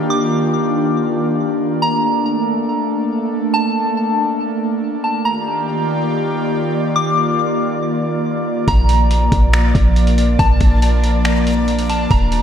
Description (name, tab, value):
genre	hip hop, atmospheric cloud-rap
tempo	140 BPM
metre	4/4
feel	half-time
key	Bb major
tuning	A4 = 444 Hz
part	airy breathy pad	sustained chords	0.0-12.4 s	Eb3 to D5	-18 LUFS	equal	chorus, sidechain pumping
part	soft synth bell	melody	0.1-12.4 s	A5 to D6	-21 LUFS	equal	chorus, phaser, ping-pong delay
part	warm 808-style bass	bass	8.7-12.4 s	Eb1 to Bb1	-15 LUFS	equal	none
part	trip hop sampler-style drum kit	drums	8.7-12.4 s	finger snaps, hi-hat, kick drum	-19 LUFS	equal	none
part	backwards swelling texture	texture	9.9-12.4 s	D4 to A6	-29 LUFS	left 1 dB	built-in reverb
room	moderate lush hall reverb, RT60 1.8 s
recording	dreamy mix soaked in reverb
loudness	-14 LUFS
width	side -9 dB against mid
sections	0.0-12.4 A section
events	none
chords	0.0 Ebmaj7; 1.8 Bbmaj7; 5.2 Ebmaj7; 8.7 Bbmaj7